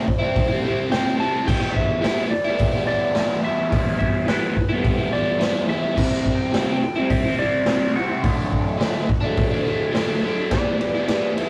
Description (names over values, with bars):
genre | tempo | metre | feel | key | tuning
garage rock duo or trio | 106 BPM | 4/4 | straight | E minor | A4 = 439 Hz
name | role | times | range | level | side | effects
clean lap steel guitar | melody | 0.0-11.5 s | G4 to A5 | -28 LUFS | equal | none
crunchy overdriven guitar | riff | 0.0-11.5 s | C3 to E4 | -25 LUFS | equal | phaser
raw garage drum kit | drums | 0.1-11.5 s | crash cymbal, hi-hat, kick drum, ride cymbal, snare drum | -25 LUFS | equal | none
room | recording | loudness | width
wet booth ambience, RT60 0.2 s | rough rehearsal-room recording, warm saturation, faint mains hum | -21 LUFS | mono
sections
0.0-10.5 A section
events
none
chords
0.0 C; 1.5 Em; 6.0 C; 8.2 D; 10.5 Em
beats
0.36 0.92 | 1.48 2.03 2.59 3.15 | 3.72 4.28 4.84 5.40 | 5.97 6.53 7.10 7.67 | 8.23 8.80 9.37 9.94 | 10.51 11.08